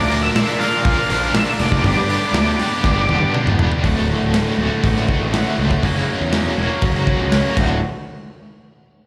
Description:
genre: quiet-loud alternative rock.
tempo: 121 BPM.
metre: 4/4.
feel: straight.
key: D major.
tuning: A4 = 440 Hz.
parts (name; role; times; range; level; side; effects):
octave-fuzz lead guitar; melody; 0.0-3.3 s; D5 to F5; -24 LUFS; equal; distortion.
tonewheel organ; sustained chords; 0.0-3.8 s; F4 to D6; -35 LUFS; equal; none.
cranked stack guitar; riff; 0.0-7.8 s; D2 to Bb4; -26 LUFS; equal; overdrive, tremolo, slapback echo.
tight distorted guitar; riff; 0.0-7.8 s; D2 to Bb4; -25 LUFS; equal; distortion, slapback echo.
fuzz picked electric bass; bass; 0.0-7.8 s; D1 to Bb2; -23 LUFS; equal; overdrive.
big rock drum kit; drums; 0.1-7.7 s; crash cymbal, hi-hat, kick drum, snare drum, toms; -23 LUFS; equal; none.
electric guitar through a small old amp; arpeggios; 3.8-7.8 s; D2 to F#4; -30 LUFS; equal; none.
room: light reverb, studio ambience.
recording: live gig heard through the venue's PA, club reverb.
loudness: -18 LUFS.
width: mono.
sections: 0.0-3.8 A section; 3.8-7.8 B section; 7.8-9.1 C section.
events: drum fill 2.8-3.8.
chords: 0.0 Bb; 1.9 G; 3.8 D; 5.8 F#; 7.6 D; 7.8 N.C..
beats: 0.36 0.86 1.35 | 1.85 2.35 2.85 3.34 | 3.84 4.34 4.83 5.33 | 5.83 6.33 6.83 7.32.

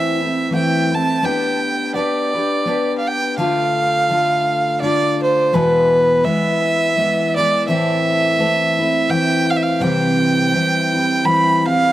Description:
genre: folk.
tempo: 84 BPM.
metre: 3/4.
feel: swing 56% on 8ths.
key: A minor.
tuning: A4 = 440 Hz.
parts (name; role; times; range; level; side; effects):
warm fiddle; melody; 0.0-11.9 s; B4 to B5; -17 LUFS; right 2 dB; tape echo.
picked steel-string acoustic guitar; accompaniment; 0.0-11.9 s; E2 to B4; -18 LUFS; left 2 dB; none.
room: moderate booth ambience, RT60 0.2 s.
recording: dry, close 1970s-style studio recording.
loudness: -15 LUFS.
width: side -14 dB against mid.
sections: 0.0-11.9 A section.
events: none.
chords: 0.0 Am; 1.2 G/B; 3.4 Dm; 5.5 E; 7.7 Am; 9.8 C.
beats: 0.53 | 1.24 1.96 2.67 | 3.39 4.10 4.82 | 5.53 6.25 6.96 | 7.68 8.39 9.11 | 9.82 10.54 11.26.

